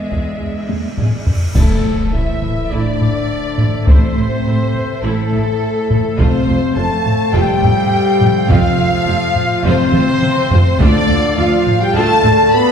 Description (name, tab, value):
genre	cinematic, epic orchestral film score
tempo	104 BPM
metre	4/4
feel	straight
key	A minor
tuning	A4 = 440 Hz
part	clear symphonic violin section	melody	0.0-12.7 s	A4 to B5	-24 LUFS	left 3 dB	none
part	rich studio violin section	second line	0.0-12.7 s	A4 to B5	-26 LUFS	left 2 dB	none
part	bright trombone section	sustained chords	0.0-12.7 s	A2 to B3	-24 LUFS	right 2 dB	none
part	dark French horn section	sustained chords	0.0-12.7 s	A3 to B4	-19 LUFS	left 2 dB	none
part	clear symphonic cello section	bass	0.0-12.3 s	D2 to G#3	-22 LUFS	right 1 dB	none
part	cymbal swell and impact	sound effects	0.9-3.9 s	none	-27 LUFS	equal	none
part	clear symphonic viola section	accompaniment	0.1-12.3 s	A3 to G#4	-24 LUFS	equal	none
part	clear symphonic double bass section	bass	0.1-12.3 s	F1 to E2	-22 LUFS	right 2 dB	none
part	taiko ensemble	drums	0.1-12.5 s	none	-16 LUFS	equal	none
part	hollow concert flute	second line	1.5-12.7 s	A4 to B5	-25 LUFS	left 2 dB	none
part	warm woodwind section	sustained chords	1.5-12.7 s	A3 to F5	-28 LUFS	equal	none
part	clear trumpet section	stabs	1.6-12.7 s	A4 to B5	-24 LUFS	equal	none
part	clash cymbals and concert bass drum	percussion	1.6-2.7 s	none	-22 LUFS	equal	none
room	wet scoring stage reverb, RT60 1.6 s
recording	heard from further back in the room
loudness	-12 LUFS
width	side -7 dB against mid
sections	0.0-1.6 A section; 1.6-12.7 B section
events	drum fill 0.7-1.6, 9.9-10.8; cymbal swell 0.9-1.6; band accent 1.6-2.1; impact 1.6-3.9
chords	0.0 E7; 1.6 Am; 6.2 F; 10.8 Dm